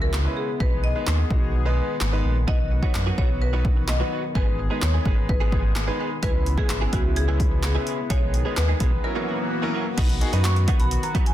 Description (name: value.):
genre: dance-pop.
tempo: 128 BPM.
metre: 4/4.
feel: straight.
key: B major.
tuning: A4 = 440 Hz.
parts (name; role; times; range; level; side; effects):
marimba with medium hard mallets; melody; 0.0-11.3 s; F#4 to C#6; -32 LUFS; left 2 dB; ping-pong delay.
bright grand piano; accompaniment; 0.0-10.9 s; F#3 to B4; -32 LUFS; equal; sidechain pumping.
chorused pulse-width pad; sustained chords; 0.0-11.3 s; C#3 to G#4; -31 LUFS; left 2 dB; sidechain pumping.
sub bass with octave; bass; 0.0-11.0 s; G#1 to F#2; -23 LUFS; equal; sidechain pumping.
punchy analog drum machine; drums; 0.1-11.3 s; crash cymbal, handclaps, hi-hat, kick drum, snare drum; -24 LUFS; equal; none.
direct-recorded clean electric guitar; riff; 2.5-11.3 s; E3 to G#4; -33 LUFS; right 6 dB; ensemble chorus.
swell; sound effects; 8.8-10.0 s; none; -34 LUFS; right 2 dB; none.
room: little or no reverb.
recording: dense, heavily limited modern master.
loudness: -20 LUFS.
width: side -13 dB against mid.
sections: 0.0-10.0 A section; 10.0-11.3 B section.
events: kick muted 1.5-2.5; swell 8.8-10.0; break 9.0-10.0.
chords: 0.0 C#m7; 0.6 G#m/B; 2.5 B; 4.4 G#m; 6.2 C#m7; 8.1 G#m/B; 9.0 F#7; 10.0 B.